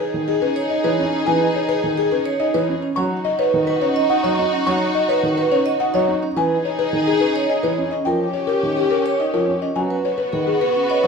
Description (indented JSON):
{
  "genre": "classical, minimalist pattern music",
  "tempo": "106 BPM",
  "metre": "3/4",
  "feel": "straight",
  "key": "unclear",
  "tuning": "A4 = 440 Hz",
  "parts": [
    { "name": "buzzing marimba with soft mallets", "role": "melody", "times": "0.0-11.1 s", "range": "G4 to C#6", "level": "-22 LUFS", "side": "left 7 dB", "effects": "none" },
    { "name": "mellow French horn", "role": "second line", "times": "0.0-11.1 s", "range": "C#4 to B4", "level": "-26 LUFS", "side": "right 3 dB", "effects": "none" },
    { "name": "warm symphonic violin section", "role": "sustained chords", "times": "0.0-11.1 s", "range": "B3 to G#4", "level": "-26 LUFS", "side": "left 3 dB", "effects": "none" },
    { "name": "vibraphone with medium mallets", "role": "arpeggios", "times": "0.0-11.1 s", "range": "C#4 to D#5", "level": "-22 LUFS", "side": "right 5 dB", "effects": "none" },
    { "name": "dark baby grand piano", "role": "accompaniment", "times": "0.1-11.1 s", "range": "D#3 to D#4", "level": "-24 LUFS", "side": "right 2 dB", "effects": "none" }
  ],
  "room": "moderate recital hall reverb, RT60 1.7 s",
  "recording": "recorded in a church or concert hall",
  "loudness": "-17 LUFS",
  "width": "side -5 dB against mid",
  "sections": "0.0-9.8 A section; 9.8-11.1 B section",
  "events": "none",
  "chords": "0.0 Emaj7; 3.0 B; 6.4 Emaj7; 8.1 D#7; 9.8 G#m7"
}